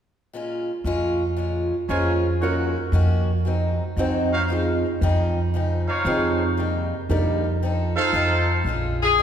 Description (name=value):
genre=jazz, big band swing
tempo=116 BPM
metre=4/4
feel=swing 66% on 8ths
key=Bb minor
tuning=A4 = 440 Hz
part: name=picked steel-string acoustic guitar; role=accompaniment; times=0.3-9.2 s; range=Ab2 to A4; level=-26 LUFS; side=left 1 dB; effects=none
part: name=upright bass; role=bass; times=0.8-9.2 s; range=Bb1 to F2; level=-23 LUFS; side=equal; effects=none
part: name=dark upright piano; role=accompaniment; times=1.9-8.1 s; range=C3 to C5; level=-27 LUFS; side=right 2 dB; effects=none
part: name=warm trumpet section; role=stabs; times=1.9-8.6 s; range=Eb4 to Ab5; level=-26 LUFS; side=right 1 dB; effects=none
part: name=clear saxophone section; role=melody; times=9.0-9.2 s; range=Ab4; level=-16 LUFS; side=left 6 dB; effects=none
room=wet scoring stage reverb, RT60 2.0 s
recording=recorded in a church or concert hall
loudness=-20 LUFS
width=side -8 dB against mid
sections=0.3-8.6 A section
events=none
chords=0.3 Bbm7; 2.4 Ebm7; 3.5 Ab7; 4.5 Dbmaj9; 6.6 Cm7; 7.6 F7; 8.6 Bbm7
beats=| 0.33 0.85 1.37 1.89 | 2.41 2.93 3.45 3.97 | 4.49 5.01 5.53 6.05 | 6.57 7.09 7.61 8.13 | 8.65 9.17